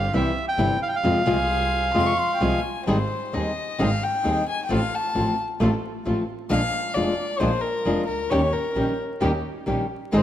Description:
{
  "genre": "tango",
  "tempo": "132 BPM",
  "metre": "4/4",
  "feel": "rubato",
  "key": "Ab major",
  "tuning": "A4 = 440 Hz",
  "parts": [
    { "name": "bandoneon", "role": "melody", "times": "0.0-2.6 s", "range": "E5 to G5", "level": "-24 LUFS", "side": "right 1 dB", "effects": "none" },
    { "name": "dark studio string section", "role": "stabs", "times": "0.0-10.2 s", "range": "Bb3 to A4", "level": "-34 LUFS", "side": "right 2 dB", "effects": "none" },
    { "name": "clear double bass", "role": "bass", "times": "0.0-10.2 s", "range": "F1 to F2", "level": "-27 LUFS", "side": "right 1 dB", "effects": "none" },
    { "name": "nylon-string guitar", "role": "accompaniment", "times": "0.1-10.2 s", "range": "C3 to Ab4", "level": "-25 LUFS", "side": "left 1 dB", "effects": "none" },
    { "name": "warm violin", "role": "second line", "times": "1.3-10.2 s", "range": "Bb4 to Db6", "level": "-26 LUFS", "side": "left 3 dB", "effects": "none" }
  ],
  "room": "moderate concert hall reverb, RT60 2.2 s",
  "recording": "vinyl crackle, faint mains hum",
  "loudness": "-21 LUFS",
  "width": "side -11 dB against mid",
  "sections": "0.0-2.9 A section; 2.9-10.2 B section",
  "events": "violin solo 2.9-10.2",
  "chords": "0.1 C; 1.0 Fm; 2.9 Abmaj7; 4.7 F/A; 6.5 Bb7; 8.3 Eb7"
}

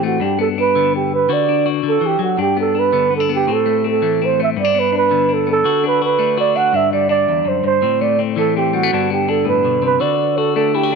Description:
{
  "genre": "highlife",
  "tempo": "110 BPM (dotted quarters)",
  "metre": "12/8",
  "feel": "straight",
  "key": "G major",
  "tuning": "A4 = 440 Hz",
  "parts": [
    { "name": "breathy flugelhorn", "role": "melody", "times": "0.0-11.0 s", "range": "F#4 to F#5", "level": "-16 LUFS", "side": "right 7 dB", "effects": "none" },
    { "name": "clean electric guitar", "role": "accompaniment", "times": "0.0-11.0 s", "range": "E2 to F#4", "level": "-19 LUFS", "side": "left 13 dB", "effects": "spring reverb" }
  ],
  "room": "moderate plate reverb, RT60 2.5 s",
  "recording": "1960s-style stereo with parts hard left and right",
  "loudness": "-14 LUFS",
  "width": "side -5 dB against mid",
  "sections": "0.0-11.0 A section",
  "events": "none",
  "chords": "0.2 G; 1.3 D; 2.4 G; 3.5 Am; 4.6 G; 5.7 D; 6.7 G5; 7.8 Am; 8.9 G; 10.0 D"
}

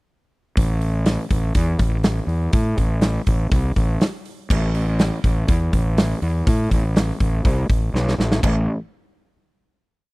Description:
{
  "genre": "classic rock",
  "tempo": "122 BPM",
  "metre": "4/4",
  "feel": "straight",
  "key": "A minor",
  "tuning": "A4 = 440 Hz",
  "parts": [
    { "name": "fuzz fingered electric bass", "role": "bass", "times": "0.6-8.7 s", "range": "A1 to A2", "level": "-20 LUFS", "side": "equal", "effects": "overdrive" },
    { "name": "big rock drum kit", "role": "drums", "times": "0.6-8.5 s", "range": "crash cymbal, hi-hat, kick drum, snare drum", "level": "-20 LUFS", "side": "equal", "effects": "none" }
  ],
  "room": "little or no reverb",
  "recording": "dry, close 1970s-style studio recording",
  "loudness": "-17 LUFS",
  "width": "side -24 dB against mid",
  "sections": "0.6-8.4 riff; 8.4-10.1 final note",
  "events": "drum fill 7.9-8.4",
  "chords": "none"
}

